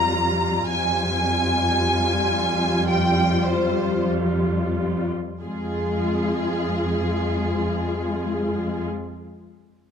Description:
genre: cinematic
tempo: free time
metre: none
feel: none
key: F minor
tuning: A4 = 439 Hz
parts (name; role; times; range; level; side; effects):
- warm symphonic violin section; melody; 0.0-8.9 s; Ab4 to Bb5; -24 LUFS; equal; none
- dark symphonic viola section; accompaniment; 0.0-8.9 s; G3 to F4; -26 LUFS; left 3 dB; none
- rich symphonic cello section; bass; 0.0-8.9 s; F2; -25 LUFS; right 1 dB; none
room: light reverb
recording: close, detailed microphones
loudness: -20 LUFS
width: side -7 dB against mid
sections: 0.0-5.4 A section; 5.4-9.9 B section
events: slowing down 0.0-5.4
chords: 0.0 Fmadd9; 5.4 Fm

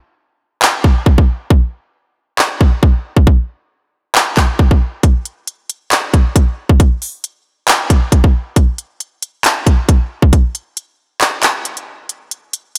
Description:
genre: hip hop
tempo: 136 BPM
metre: 4/4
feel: half-time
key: none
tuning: none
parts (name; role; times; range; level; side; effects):
- trap drum kit; drums; 0.6-12.8 s; handclaps, hi-hat, kick drum; -13 LUFS; equal; none
room: light reverb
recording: none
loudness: -13 LUFS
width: mono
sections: 0.0-12.8 A section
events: break 0.0-5.0, 12.1-12.8; kick muted 11.2-12.1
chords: none

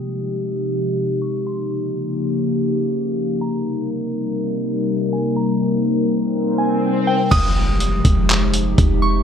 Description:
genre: hip hop, atmospheric cloud-rap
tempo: 123 BPM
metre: 4/4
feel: half-time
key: F minor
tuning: A4 = 440 Hz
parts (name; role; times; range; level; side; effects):
- soft synth bell; melody; 0.0-9.2 s; G5 to Eb6; -25 LUFS; right 2 dB; chorus, tape echo
- warbly tape-like pad; sustained chords; 0.0-9.2 s; C3 to Bb4; -19 LUFS; left 2 dB; chorus, built-in reverb, sidechain pumping
- swell and impact; sound effects; 6.1-9.2 s; none; -26 LUFS; right 2 dB; none
- clean 808-style bass; bass; 7.3-9.2 s; F1; -18 LUFS; equal; none
- trip hop sampler-style drum kit; drums; 7.3-8.9 s; crash cymbal, handclaps, hi-hat, kick drum; -19 LUFS; equal; none
room: moderate lush hall reverb, RT60 1.7 s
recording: low-pass filter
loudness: -17 LUFS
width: side -8 dB against mid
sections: 0.0-7.3 A section; 7.3-9.2 B section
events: filter sweep 0.0-7.3; swell 6.1-7.3; impact 7.3-9.2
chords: 0.0 Fm9; 1.5 Eb9; 3.4 Cm7; 7.3 Fm9

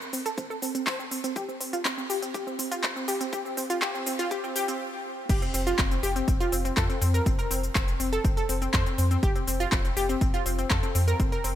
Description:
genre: progressive house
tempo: 122 BPM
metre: 4/4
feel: straight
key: F major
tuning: A4 = 441 Hz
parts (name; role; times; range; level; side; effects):
- big-room dance drum kit; drums; 0.0-11.5 s; crash cymbal, handclaps, hi-hat, shaker; -32 LUFS; left 1 dB; sidechain pumping on hats, high-pass filter on hats, sidechain pumping on perc, high-pass filter on perc, high-pass filter on snare, sidechain pumping on cymbals, high-pass filter on cymbals, high-pass filter on room
- analog pluck; arpeggios; 0.1-11.5 s; C4 to C5; -29 LUFS; equal; chorus, cassette tape, sidechain pumping, dub echo
- electronic kick drum; drums; 0.4-11.3 s; none; -26 LUFS; equal; high-pass filter on kick
- round analog bass; bass; 5.3-11.6 s; F1 to F2; -28 LUFS; equal; sidechain pumping
room: light reverb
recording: high-pass filter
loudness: -24 LUFS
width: side -11 dB against mid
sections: 0.0-5.3 A section; 5.3-11.6 B section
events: build-up 0.0-5.3; filter sweep on synth pluck 0.0-5.3; stop 4.8-5.3; drop 5.3-11.6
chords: 0.0 N.C.; 5.3 F5

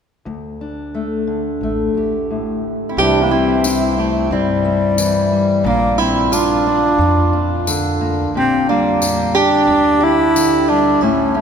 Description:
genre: acoustic folk duo or small band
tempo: 89 BPM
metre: 4/4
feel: straight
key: unclear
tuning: A4 = 440 Hz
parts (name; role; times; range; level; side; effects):
- fingerpicked steel-string acoustic guitar; accompaniment; 0.3-11.4 s; D2 to G4; -20 LUFS; left 2 dB; none
- upright bass; bass; 0.3-11.4 s; A1 to G2; -25 LUFS; right 1 dB; none
- warm bass clarinet; melody; 2.9-11.4 s; G3 to E4; -15 LUFS; equal; none
- lap resonator guitar; second line; 2.9-11.4 s; C4 to G4; -20 LUFS; right 4 dB; none
- tambourine; percussion; 3.6-10.5 s; none; -26 LUFS; left 3 dB; none
room: wet cathedral reverb, RT60 5.6 s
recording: recorded in a church or concert hall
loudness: -13 LUFS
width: side -7 dB against mid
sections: 0.3-3.0 A section; 3.0-11.4 B section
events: none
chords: 0.3 D5; 3.0 C; 5.7 Bb; 8.3 Gm/Bb

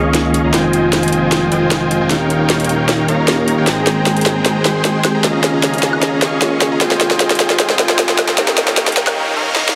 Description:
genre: future bass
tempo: 153 BPM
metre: 4/4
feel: half-time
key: unclear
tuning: A4 = 442 Hz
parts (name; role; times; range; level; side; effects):
- mellow tine electric piano; accompaniment; 0.0-9.8 s; Eb3 to G5; -22 LUFS; equal; vintage 12-bit sampler grit, delay
- shimmering ambient pad; sustained chords; 0.0-9.2 s; Eb3 to G5; -27 LUFS; equal; none
- dense compressed supersaw; riff; 0.0-9.8 s; Ab3 to Db6; -20 LUFS; equal; low-pass filter, delay
- detuned saw bass; bass; 0.0-9.2 s; Eb1 to F2; -27 LUFS; equal; chorus
- trap drum kit; drums; 0.1-9.8 s; hi-hat, snare drum, woodblock; -18 LUFS; equal; none
- riser and reverse cymbal; sound effects; 8.3-9.8 s; none; -30 LUFS; equal; none
room: moderate huge ambient reverb, RT60 4.2 s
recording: heavily compressed radio sound, high-pass filter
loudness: -15 LUFS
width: mono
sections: 0.0-9.8 A section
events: build-up 0.0-9.8; drum fill 0.0-9.2, 9.6; filter sweep 0.0-9.8; reverse cymbal 9.2-9.8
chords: 0.0 Db69; 0.5 Fm7; 2.1 Eb7; 3.7 Abmaj7; 5.2 Db69; 6.8 Fm7; 8.4 Eb7

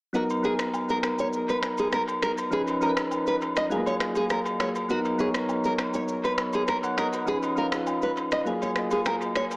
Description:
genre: afrobeats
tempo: 101 BPM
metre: 4/4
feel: straight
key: unclear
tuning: A4 = 440 Hz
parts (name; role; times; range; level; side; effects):
- soft electric-piano-like synth keys; accompaniment; 0.1-9.6 s; E#3 to F#5; -27 LUFS; equal; chorus, tremolo, dub echo
- nylon-string guitar; riff; 0.1-9.4 s; F#4 to D#5; -29 LUFS; right 1 dB; dub echo
- electronic shaker, rim click and finger snaps; drums; 0.1-9.6 s; none; -32 LUFS; equal; dub echo
- agogo bells and woodblock; percussion; 0.3-9.6 s; none; -34 LUFS; equal; dub echo
room: moderate spring reverb, RT60 1.6 s, studio reverb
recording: echo-heavy mix, small speaker sound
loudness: -24 LUFS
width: side -30 dB against mid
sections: 0.1-9.6 A section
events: kick muted 0.1-9.6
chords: 0.1 Bmaj7; 2.5 C#9; 3.7 F#maj9; 4.9 Bmaj7; 7.3 C#9; 8.5 F#maj9

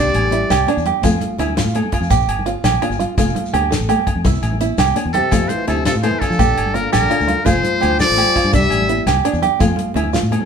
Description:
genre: highlife guitar band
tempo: 112 BPM (dotted quarters)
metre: 12/8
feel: straight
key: F major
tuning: A4 = 439 Hz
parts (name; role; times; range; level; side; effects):
- trumpet with metal mute; melody; 0.0-0.7, 5.1-9.0 s; A4 to E5; -19 LUFS; left 1 dB; none
- mellow trombone; second line; 0.0-0.7, 5.2-9.0 s; C3 to G3; -22 LUFS; left 6 dB; none
- nylon-string guitar; accompaniment; 0.0-10.5 s; A3 to D4; -25 LUFS; left 4 dB; none
- open-back banjo; arpeggios; 0.0-10.5 s; D4 to A4; -20 LUFS; right 9 dB; none
- fingered electric bass; bass; 0.0-10.4 s; F1 to F3; -21 LUFS; left 1 dB; none
- damped 70s drum kit; drums; 0.1-10.4 s; hi-hat, kick drum, snare drum; -22 LUFS; left 1 dB; none
- congas; percussion; 0.1-10.5 s; none; -27 LUFS; right 2 dB; none
- shekere; percussion; 0.1-10.3 s; none; -27 LUFS; left 5 dB; none
- agogo bells; percussion; 0.2-10.5 s; none; -27 LUFS; left 4 dB; none
room: moderate studio reverb, RT60 0.9 s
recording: band playing live in one room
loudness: -14 LUFS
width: side -7 dB against mid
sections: 0.0-10.5 A section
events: none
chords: 0.0 Cadd9; 1.0 F6; 2.1 Bb; 3.2 F6; 4.3 Cadd9; 5.3 F6; 6.4 Bb; 7.5 F6; 8.5 Cadd9; 9.6 F6

